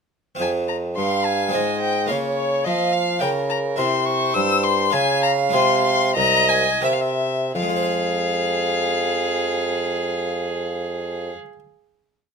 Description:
classical, baroque-style sonata movement with continuo; 83-108 BPM; 3/4; straight; F minor; A4 = 440 Hz
warm violin; melody; 0.4-11.3 s; Db5 to E6; -23 LUFS; left 8 dB
harpsichord; accompaniment; 0.4-11.6 s; C2 to F5; -28 LUFS; equal
warm bassoon; bass; 0.4-11.3 s; C2 to F3; -23 LUFS; right 2 dB
warm violin; second line; 1.0-11.3 s; Ab4 to F5; -24 LUFS; right 6 dB
light reverb; close, detailed microphones; -18 LUFS; side -5 dB against mid
0.4-7.5 A section; 7.5-11.8 final chord
slowing down 2.9-7.5
0.4 Fm; 1.5 Fm/Ab; 2.1 Bbm/Db; 3.8 C7; 4.9 Db; 5.5 Fm/C; 6.8 C7; 7.5 Fm
| 0.40 0.97 1.54 | 2.11 2.67 3.22 | 3.79 4.35 4.93 | 5.54 6.17 6.83 | 7.55 8.26 8.97 | 9.68 10.39 11.10

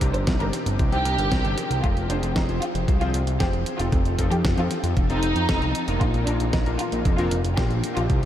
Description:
italo disco; 115 BPM; 4/4; straight; F dorian; A4 = 439 Hz
clear electric grand piano; stabs; 0.0-8.3 s; Bb2 to C5; -30 LUFS; left 3 dB; analog chorus, shimmer reverb, ping-pong delay
fat analog bass; bass; 0.0-8.3 s; F1 to F2; -24 LUFS; equal; tube saturation
clean 12-bit digital drum machine; drums; 0.0-8.3 s; hi-hat, snare drum; -31 LUFS; equal
electronic kick drum; drums; 0.0-8.2 s; -24 LUFS; equal
dark studio violin section; melody; 0.1-8.3 s; D4 to C5; -27 LUFS; right 1 dB; vintage 12-bit sampler grit, shimmer reverb, ping-pong delay
moderate huge ambient reverb, RT60 7.8 s; dreamy mix soaked in reverb; -20 LUFS; side -11 dB against mid
0.0-8.3 A section
0.0 Cmadd9; 1.8 Fm; 3.9 F7; 6.0 Bb
0.27 0.79 1.32 | 1.84 2.36 2.88 3.40 | 3.92 4.45 4.97 5.49 | 6.01 6.53 7.05 7.58 | 8.10

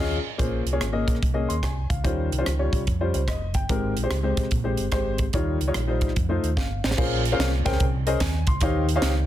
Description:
uptempo gospel; 146 BPM; 4/4; swing 65% on 8ths; A4 = 440 Hz
warm upright piano; accompaniment; 0.0-9.3 s; Ab2 to C6; -26 LUFS; left 2 dB
fingered electric bass; bass; 0.0-9.3 s; F1 to F2; -26 LUFS; right 1 dB
crisp fusion drum kit; drums; 0.4-9.1 s; crash cymbal, hi-hat, kick drum, rim click, snare drum; -26 LUFS; right 1 dB
small room ambience; dense, heavily limited modern master; -22 LUFS; side -12 dB against mid
0.4-7.0 A section; 7.0-9.3 B section
band accent 0.0-0.4; drum fill 6.6-7.0
0.4 Bbm9; 2.0 Eb13; 3.7 Abmaj9; 5.3 Eb9; 6.2 F7; 7.0 Bbm9; 8.6 Eb13
| 0.39 0.81 1.22 1.63 | 2.04 2.46 2.87 3.28 | 3.69 4.10 4.52 4.93 | 5.34 5.75 6.16 6.57 | 6.98 7.39 7.80 8.21 | 8.62 9.02

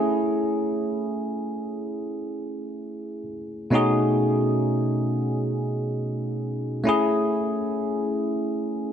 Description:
R&B; free time; A4 = 440 Hz
bell-like tine electric piano; solo; 0.0-8.9 s; B2 to G#4; -23 LUFS; equal; lush chorus
moderate plate reverb, RT60 2.7 s; -23 LUFS; side -8 dB against mid
0.0-3.7 A section; 3.7-8.9 B section
0.0 Amaj7; 3.7 B13; 6.9 Amaj7
free time

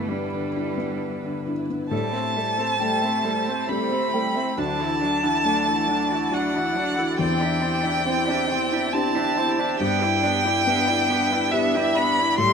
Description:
neoclassical piano and strings; 69 BPM; 3/4; rubato; A4 = 440 Hz
rich cello; second line; 0.0-12.5 s; E3 to E4; -31 LUFS; right 4 dB
felt-muted upright piano; accompaniment; 0.0-12.5 s; D2 to G4; -28 LUFS; left 3 dB
dark chamber string section; sustained chords; 0.0-12.5 s; A3 to E5; -32 LUFS; right 2 dB
rich violin; melody; 1.9-12.5 s; E5 to C6; -23 LUFS; left 2 dB
dark viola; accompaniment; 1.9-12.5 s; A3 to G4; -29 LUFS; right 3 dB
concert harp; arpeggios; 1.9-12.5 s; C4 to G5; -29 LUFS; right 2 dB
light reverb; minimal, uncompressed stereo recording; -20 LUFS; side -6 dB against mid
0.0-1.9 A section; 1.9-12.5 A section
0.0 G6; 1.9 Am7; 4.6 Dadd9; 7.2 Cadd9/E; 9.8 G6
0.10 1.01 | 1.92 2.81 3.70 | 4.58 5.46 6.33 | 7.19 8.06 8.94 | 9.81 10.67 11.53 | 12.40

